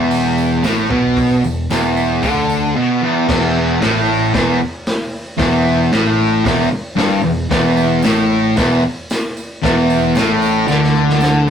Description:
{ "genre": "garage rock duo or trio", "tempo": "113 BPM", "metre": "4/4", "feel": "straight", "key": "E minor", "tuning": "A4 = 440 Hz", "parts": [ { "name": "fuzz guitar", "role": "riff", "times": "0.0-11.5 s", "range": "E2 to D3", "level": "-13 LUFS", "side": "equal", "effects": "distortion" }, { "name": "growling fingered electric bass", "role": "bass", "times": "0.0-11.5 s", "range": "E1 to D2", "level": "-24 LUFS", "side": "equal", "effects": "overdrive, tube saturation" }, { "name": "crunchy breakbeat drum kit", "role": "drums", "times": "0.1-11.4 s", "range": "crash cymbal, hi-hat, kick drum, snare drum", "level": "-21 LUFS", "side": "equal", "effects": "none" }, { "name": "tambourine", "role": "percussion", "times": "0.1-2.6, 7.8-11.3 s", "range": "none", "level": "-37 LUFS", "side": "right 6 dB", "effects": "none" } ], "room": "moderate studio reverb, RT60 0.5 s", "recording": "rough rehearsal-room recording", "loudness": "-13 LUFS", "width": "side -8 dB against mid", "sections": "0.0-3.3 A section; 3.3-11.5 B section", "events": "drum fill 10.7-11.5", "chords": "0.0 E5; 3.3 N.C.", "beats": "0.10 0.63 | 1.16 1.69 2.22 2.75 | 3.28 3.81 4.33 4.86 | 5.39 5.92 6.45 6.98 | 7.51 8.04 8.57 9.10 | 9.63 10.16 10.70 11.23" }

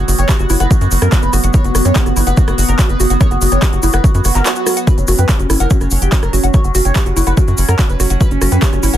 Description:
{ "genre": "psychedelic trance", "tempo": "144 BPM", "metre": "4/4", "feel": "straight", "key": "unclear", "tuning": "A4 = 440 Hz", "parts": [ { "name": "overdriven synth lead", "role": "melody", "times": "0.0-9.0 s", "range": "C#4 to C#5", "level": "-22 LUFS", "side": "right 1 dB", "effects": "distortion, chorus, phaser, sidechain pumping, digital delay" }, { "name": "overtone-sweeping drone", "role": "sustained chords", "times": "0.0-9.0 s", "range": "F#3 to C#4", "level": "-21 LUFS", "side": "equal", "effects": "chorus, built-in reverb, phaser, sidechain pumping" }, { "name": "tight sequencer bass", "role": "bass", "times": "0.0-9.0 s", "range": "F#1 to F#2", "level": "-14 LUFS", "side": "equal", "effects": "none" }, { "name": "woody wave-folded pluck", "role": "riff", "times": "0.1-9.0 s", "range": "E4 to G5", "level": "-22 LUFS", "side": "equal", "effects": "chorus, auto-pan, sidechain pumping, digital delay" }, { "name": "big-room dance drum kit", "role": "drums", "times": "0.1-9.0 s", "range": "handclaps, hi-hat, rim click", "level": "-20 LUFS", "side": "right 1 dB", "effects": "none" }, { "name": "tube shaker", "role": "percussion", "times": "0.1-9.0 s", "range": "none", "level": "-26 LUFS", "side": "left 2 dB", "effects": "none" }, { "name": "electronic kick drum", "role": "drums", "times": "0.3-8.7 s", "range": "none", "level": "-12 LUFS", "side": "equal", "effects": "none" }, { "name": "swell", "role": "sound effects", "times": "4.2-4.9 s", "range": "none", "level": "-24 LUFS", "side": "right 4 dB", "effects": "none" } ], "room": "little or no reverb", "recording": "dense, heavily limited modern master", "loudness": "-10 LUFS", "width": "side -12 dB against mid", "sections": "0.0-9.0 A section", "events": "swell 4.2-4.9; break 4.5-4.9", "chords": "0.0 F#5", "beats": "0.29 0.71 1.12 | 1.54 1.96 2.37 2.79 | 3.21 3.62 4.04 4.46 | 4.87 5.29 5.71 6.12 | 6.54 6.96 7.37 7.79 | 8.21 8.62" }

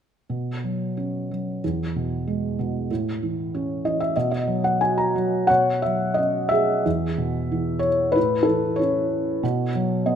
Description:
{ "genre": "classical, lyrical solo piano", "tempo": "91 BPM", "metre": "4/4", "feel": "uneven beats, rubato", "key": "B major", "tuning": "A4 = 440 Hz", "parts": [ { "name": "felt-muted upright piano", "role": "solo", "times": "0.3-10.2 s", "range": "E2 to A#5", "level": "-21 LUFS", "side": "equal", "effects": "none" } ], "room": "moderate recital hall reverb, RT60 1.6 s", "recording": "none", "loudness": "-21 LUFS", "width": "side -8 dB against mid", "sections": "0.3-5.5 A section; 5.5-10.2 B section", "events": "felt piano fill 3.5-5.5, 9.7-10.2", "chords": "0.3 Bsus2; 1.6 E; 2.9 A; 4.2 B5; 5.5 Bsus2; 6.9 E; 8.2 A; 9.4 B5", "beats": "| 0.29 0.97 1.63 2.27 | 2.90 3.53 4.16 4.81 | 5.49 6.19 6.86 7.51 | 8.16 8.81 9.43 10.06" }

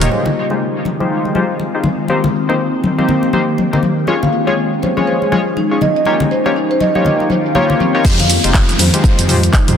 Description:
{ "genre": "afro house", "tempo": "121 BPM", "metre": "4/4", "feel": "swing 59% on 16ths", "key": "F minor", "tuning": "A4 = 437 Hz", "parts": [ { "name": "ethereal airy pad", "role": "sustained chords", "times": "0.0-9.8 s", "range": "Eb3 to Ab4", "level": "-19 LUFS", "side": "left 1 dB", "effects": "ensemble chorus, built-in reverb, phaser, sidechain pumping" }, { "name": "marimba with soft mallets", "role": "arpeggios", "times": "0.0-0.1, 4.1-9.7 s", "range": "C4 to F5", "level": "-19 LUFS", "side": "equal", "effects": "sidechain pumping, dub echo" }, { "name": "warm analog keys", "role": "stabs", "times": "0.0-9.7 s", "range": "Ab3 to Db5", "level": "-18 LUFS", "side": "left 2 dB", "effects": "chorus, sidechain pumping, low-pass filter, dub echo" }, { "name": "dark detuned saw bass", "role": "bass", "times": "0.0-0.1, 8.0-9.8 s", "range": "F1 to F2", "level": "-16 LUFS", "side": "equal", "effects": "tube saturation, sidechain pumping" }, { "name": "house drum kit", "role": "drums", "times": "0.0-9.8 s", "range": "crash cymbal, handclaps, hi-hat, shaker, toms", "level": "-18 LUFS", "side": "right 1 dB", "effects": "low-pass filter on hats, low-pass filter on toms, low-pass filter on perc, low-pass filter on snare, low-pass filter on cymbals" }, { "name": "congas", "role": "percussion", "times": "0.1-9.7 s", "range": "none", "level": "-20 LUFS", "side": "left 2 dB", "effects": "none" }, { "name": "swell and downlifter", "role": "sound effects", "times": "7.3-9.8 s", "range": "none", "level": "-22 LUFS", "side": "right 1 dB", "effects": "none" }, { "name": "electronic kick drum", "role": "drums", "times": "8.0-9.7 s", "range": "none", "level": "-12 LUFS", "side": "equal", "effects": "none" } ], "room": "moderate plate reverb, RT60 1.6 s, digital ambience", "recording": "dense, heavily limited modern master", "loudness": "-12 LUFS", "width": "side -8 dB against mid", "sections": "0.1-8.0 A section; 8.0-9.8 B section", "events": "filter sweep on synth keys 0.1-8.0; swell 7.3-8.0; drop 8.0-9.8", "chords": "0.1 Fm7; 2.1 Cm7; 4.1 Db; 6.1 Eb7; 8.0 Fm7", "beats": "| 0.11 0.61 1.10 1.60 | 2.10 2.59 3.09 3.58 | 4.08 4.58 5.07 5.57 | 6.06 6.56 7.06 7.55 | 8.05 8.54 9.04 9.54" }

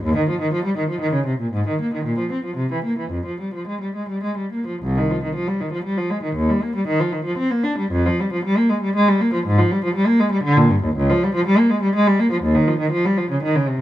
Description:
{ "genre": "classical, baroque-style suite movement for unaccompanied cello", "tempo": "101-124 BPM", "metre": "3/4", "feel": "rubato", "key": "F minor, C minor from 4.8 s", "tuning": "A4 = 440 Hz", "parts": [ { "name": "dark cello", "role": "solo", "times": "0.0-13.8 s", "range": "C2 to D4", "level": "-18 LUFS", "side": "equal", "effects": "none" } ], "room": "moderate stone room reverb, RT60 1.0 s", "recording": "none", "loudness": "-18 LUFS", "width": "side -14 dB against mid", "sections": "0.0-4.8 A section; 4.8-13.8 A section", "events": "none", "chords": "none", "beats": "| 0.03 0.52 1.01 | 1.52 2.04 2.56 | 3.11 3.67 4.23 | 4.81 5.34 5.84 | 6.36 6.86 7.38 | 7.92 8.44 8.95 | 9.45 9.95 10.44 | 10.96 11.46 11.94 | 12.43 12.92 13.43" }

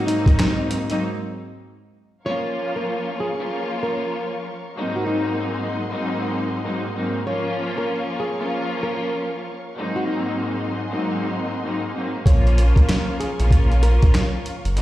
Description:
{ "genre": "hip hop, boom-bap hip-hop", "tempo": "96 BPM", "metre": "4/4", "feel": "swing 63% on 16ths", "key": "Bb minor", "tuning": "A4 = 442 Hz", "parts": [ { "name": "flamenco guitar", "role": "melody", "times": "0.0-14.3 s", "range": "Eb4 to Db5", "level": "-28 LUFS", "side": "equal", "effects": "high-pass filter, low-pass filter, tape echo" }, { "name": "clear studio string section", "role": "accompaniment", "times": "0.0-14.8 s", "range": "Ab2 to F4", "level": "-25 LUFS", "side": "equal", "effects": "cassette tape, high-pass filter, low-pass filter" }, { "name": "boom bap sampler-style drum kit", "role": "drums", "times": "0.1-1.0, 12.3-14.8 s", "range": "hi-hat, kick drum, rim click, snare drum", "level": "-18 LUFS", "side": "equal", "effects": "none" }, { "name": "rich symphonic string section", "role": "sustained chords", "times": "2.2-14.8 s", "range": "Ab4 to Db6", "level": "-34 LUFS", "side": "left 1 dB", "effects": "high-pass filter, low-pass filter" }, { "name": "round analog bass", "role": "bass", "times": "12.3-14.8 s", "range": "Gb1 to Db2", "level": "-17 LUFS", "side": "equal", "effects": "none" } ], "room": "light reverb, small room ambience", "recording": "played on a big sound system in a bare room, stone room reverb", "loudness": "-20 LUFS", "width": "side -15 dB against mid", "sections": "0.0-2.3 A section; 2.3-14.8 B section", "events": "break 1.0-2.3", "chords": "0.0 Ab7; 2.3 Bbm; 4.8 Ab7; 7.3 Bbm; 9.8 Ab7; 12.3 Bbm", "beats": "0.39 1.01 1.64 | 2.26 2.88 3.51 4.13 | 4.76 5.38 6.01 6.63 | 7.26 7.88 8.51 9.13 | 9.76 10.38 11.01 11.63 | 12.26 12.88 13.51 14.13 | 14.76" }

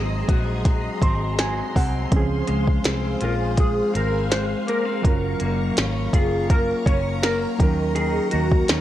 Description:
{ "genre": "indie pop, bedroom pop", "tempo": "82 BPM", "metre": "4/4", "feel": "straight", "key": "Db major", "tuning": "A4 = 440 Hz", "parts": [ { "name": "clean lap steel guitar", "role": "melody", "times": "0.0-8.8 s", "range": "Eb4 to Db5", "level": "-26 LUFS", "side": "equal", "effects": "ensemble chorus" }, { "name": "electric guitar through a small old amp", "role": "accompaniment", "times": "0.0-8.8 s", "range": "Ab2 to Gb4", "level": "-28 LUFS", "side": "left 4 dB", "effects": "wide subtle chorus, warbly pitch drift" }, { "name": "reed electric piano", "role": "accompaniment", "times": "0.0-8.8 s", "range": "Fb3 to C6", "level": "-30 LUFS", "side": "right 4 dB", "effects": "none" }, { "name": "string machine, violins", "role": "sustained chords", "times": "0.0-8.8 s", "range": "Ab4 to Db6", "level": "-31 LUFS", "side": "equal", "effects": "ensemble chorus" }, { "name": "vintage muted fingered electric bass", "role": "bass", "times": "0.0-8.8 s", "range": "Gb1 to Eb2", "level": "-26 LUFS", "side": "equal", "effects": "none" }, { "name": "minimal click drum kit", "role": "drums", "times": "0.3-8.8 s", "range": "hi-hat, kick drum, snare drum", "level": "-21 LUFS", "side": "equal", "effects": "none" } ], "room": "little or no reverb", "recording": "dark, warm production", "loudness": "-19 LUFS", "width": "side -13 dB against mid", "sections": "0.0-8.8 A section", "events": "reed electric piano fill 0.7-2.1", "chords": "0.0 Ab7; 2.1 Dbmaj7; 5.0 Gbmaj7; 7.6 Ebm7", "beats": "0.66 1.39 | 2.12 2.85 3.58 4.31 | 5.04 5.77 6.50 7.23 | 7.96 8.69" }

